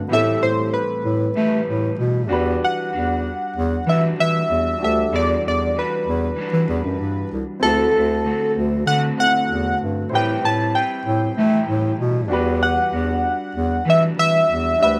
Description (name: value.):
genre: indie pop.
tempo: 96 BPM.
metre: 4/4.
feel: straight.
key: unclear.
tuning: A4 = 438 Hz.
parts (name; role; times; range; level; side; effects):
electric guitar at the edge of break-up; accompaniment; 0.0-15.0 s; A2 to B4; -30 LUFS; equal; warbly pitch drift.
warm upright piano; accompaniment; 0.0-15.0 s; A3 to C5; -30 LUFS; equal; none.
dark bass clarinet; bass; 0.0-15.0 s; C2 to A3; -23 LUFS; equal; none.
warm analog keys; melody; 0.1-15.0 s; A4 to A5; -22 LUFS; equal; chorus.
room: little or no reverb.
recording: recorded outdoors, with no room sound, lossy compression artefacts.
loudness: -20 LUFS.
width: mono.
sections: 0.0-15.0 A section.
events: none.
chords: 0.1 Am9; 2.3 Em9; 7.6 D7; 10.1 Am9; 12.3 Em9.